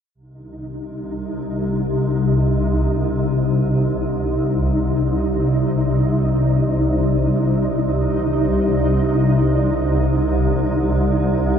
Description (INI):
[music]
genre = dark ambient drone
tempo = free time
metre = none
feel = none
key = C minor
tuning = A4 = 440 Hz
[part]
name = swarming drone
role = drone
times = 0.6-11.6 s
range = C2 to C3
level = -18 LUFS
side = equal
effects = built-in reverb
[part]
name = deep dark ambient pad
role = sustained chords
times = 4.6-11.6 s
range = Eb4 to D5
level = -32 LUFS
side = right 6 dB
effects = chorus, built-in reverb, shimmer reverb
[part]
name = flickering grainy texture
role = texture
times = 0.5-11.6 s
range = Eb4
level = -24 LUFS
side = equal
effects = built-in reverb, shimmer reverb
[sound]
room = wet huge ambient reverb, RT60 9.1 s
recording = dark, warm production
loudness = -16 LUFS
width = side -8 dB against mid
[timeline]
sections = 0.2-11.6 A section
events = fade-in on ambient pad 0.2-11.6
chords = 0.2 Cm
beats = free time